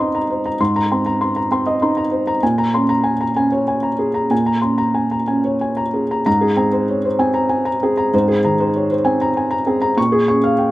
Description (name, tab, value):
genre	neoclassical minimalist piano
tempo	65 BPM (dotted quarters)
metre	6/8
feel	rubato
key	Ab major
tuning	A4 = 438 Hz
part	felt-muted upright piano	solo	0.0-10.7 s	Ab2 to Db6	-15 LUFS	equal	none
room	little or no reverb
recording	recorded outdoors, with no room sound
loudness	-15 LUFS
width	side -16 dB against mid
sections	0.0-6.3 A section; 6.3-10.7 B section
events	none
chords	0.0 Abadd9; 2.4 Bbm7; 6.3 Abadd9; 10.0 Bbm7